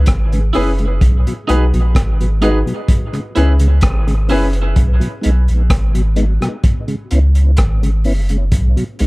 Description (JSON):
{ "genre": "dub reggae", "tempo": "64 BPM", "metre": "4/4", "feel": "straight", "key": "B major", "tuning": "A4 = 441 Hz", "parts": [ { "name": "warm sub bass", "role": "bass", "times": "0.0-9.1 s", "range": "F#1 to C#2", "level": "-13 LUFS", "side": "equal", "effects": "none" }, { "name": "crunchy breakbeat drum kit", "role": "drums", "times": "0.1-9.1 s", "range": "hi-hat, kick drum, rim click", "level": "-17 LUFS", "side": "equal", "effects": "none" }, { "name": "mellow tonewheel organ", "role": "accompaniment", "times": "0.3-9.1 s", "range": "B2 to E4", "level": "-23 LUFS", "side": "equal", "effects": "chorus vibrato, slow rotary speaker, dub echo" }, { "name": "warm upright piano", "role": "stabs", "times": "0.3-4.6 s", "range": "C#4 to B4", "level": "-22 LUFS", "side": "left 2 dB", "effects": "dub echo" }, { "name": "electric guitar at the edge of break-up", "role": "accompaniment", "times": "0.5-4.5 s", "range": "D#4 to B4", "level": "-25 LUFS", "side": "right 3 dB", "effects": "dub echo" } ], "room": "studio reverb", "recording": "echo-heavy mix", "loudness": "-12 LUFS", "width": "side -23 dB against mid", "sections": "0.0-9.1 A section", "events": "none", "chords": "0.0 C#m7; 1.0 B6; 2.9 C#m7; 4.8 B6; 6.6 C#m7; 8.5 B6" }